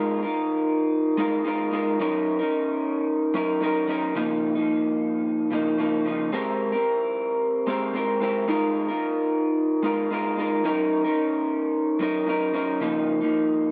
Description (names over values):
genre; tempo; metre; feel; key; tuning
indie pop; 111 BPM; 4/4; straight; unclear; A4 = 440 Hz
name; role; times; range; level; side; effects
electric guitar through a small old amp; solo; 0.0-13.7 s; Db3 to Bb4; -24 LUFS; equal; analog chorus, warbly pitch drift, slapback echo
room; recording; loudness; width
light reverb, digital ambience; none; -24 LUFS; mono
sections
0.0-13.7 A section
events
none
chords
0.0 Bb7sus4/Ab; 2.0 Gb6; 4.2 Db69; 6.3 Abmaj9; 8.5 Bb7sus4/Ab; 10.6 Gb6; 12.8 Db69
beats
0.38 0.92 1.46 | 2.00 2.54 3.08 3.62 | 4.16 4.70 5.24 5.78 | 6.33 6.87 7.41 7.95 | 8.49 9.03 9.57 10.11 | 10.65 11.19 11.73 12.27 | 12.81 13.35